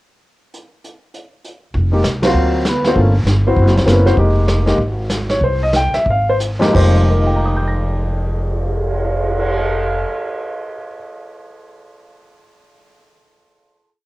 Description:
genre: jazz piano trio.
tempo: 169-198 BPM.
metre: 4/4.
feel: swing 63% on 8ths.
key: F minor.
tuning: A4 = 440 Hz.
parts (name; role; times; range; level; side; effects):
vintage brush drum kit; drums; 0.5-9.5 s; brushed snare drum, crash cymbal, cymbal swell, hi-hat, kick drum, ride cymbal, snare drum; -22 LUFS; right 1 dB; cassette tape.
upright bass; bass; 1.7-10.0 s; F1 to D2; -16 LUFS; equal; transformer saturation.
warm baby grand piano; melody; 1.9-11.0 s; F2 to Bb6; -17 LUFS; left 1 dB; cassette tape.
room: small room ambience.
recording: home recording on cassette.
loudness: -13 LUFS.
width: side -18 dB against mid.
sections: 0.5-1.7 pickup bar; 1.7-6.7 A section; 6.7-9.6 final chord.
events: band accent 2.2; slowing down 4.2-6.7; drum fill 6.4-6.7.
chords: 0.5 N.C.; 1.7 Fsus4; 2.4 D7alt; 3.0 Gm7b5; 3.6 Gb7#11; 4.2 Fm11.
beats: | 0.54 0.84 1.14 1.44 | 1.75 2.05 2.35 2.65 | 2.96 3.26 3.56 3.86 | 4.17 4.47 4.77 5.08 | 5.40 5.72 6.05 6.39 | 6.74 7.09 7.44 7.80 | 8.15 8.51 8.86 9.22.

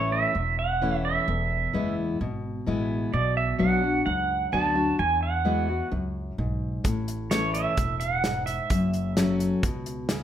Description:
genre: honky-tonk and classic country.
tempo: 129 BPM.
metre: 4/4.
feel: straight.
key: A major.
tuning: A4 = 440 Hz.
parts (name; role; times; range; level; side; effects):
pedal steel guitar; second line; 0.0-9.4 s; C#5 to A5; -26 LUFS; right 4 dB; none.
picked steel-string acoustic guitar; accompaniment; 0.0-10.2 s; E2 to F#4; -28 LUFS; left 3 dB; none.
upright bass; bass; 0.0-10.2 s; E1 to E2; -31 LUFS; equal; none.
natural country drum kit; drums; 6.8-10.2 s; hi-hat, kick drum, snare drum; -29 LUFS; equal; none.
room: moderate large studio reverb, RT60 0.8 s.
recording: none.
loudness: -23 LUFS.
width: side -10 dB against mid.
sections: 0.0-10.2 A section.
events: pedal steel guitar solo 0.0-10.2.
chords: 0.0 A; 1.3 E; 3.1 Bm; 5.0 Eadd9; 6.8 A; 8.7 F#m.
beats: 0.35 0.81 | 1.28 1.74 2.21 2.67 | 3.13 3.60 4.06 4.53 | 4.99 5.45 5.92 6.38 | 6.84 7.31 7.77 8.24 | 8.70 9.16 9.63 10.09.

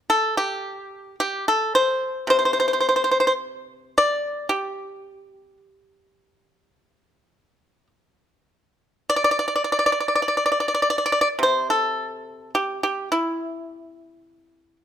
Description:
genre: chinese traditional, Chinese solo plucked strings.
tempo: 53 BPM.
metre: 4/4.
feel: uneven beats, rubato.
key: unclear.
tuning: A4 = 438 Hz.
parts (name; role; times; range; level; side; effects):
pipa; solo; 0.1-14.8 s; C3 to D5; -20 LUFS; equal; none.
room: light reverb.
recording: close, detailed microphones.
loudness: -20 LUFS.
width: side -9 dB against mid.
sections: 0.0-9.1 A section; 9.1-14.8 B section.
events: none.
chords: none.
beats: | 0.10 1.19 2.29 3.40 | 4.49 5.58 6.71 7.90 | 9.09 10.24 11.40 12.53 | 13.65 14.77.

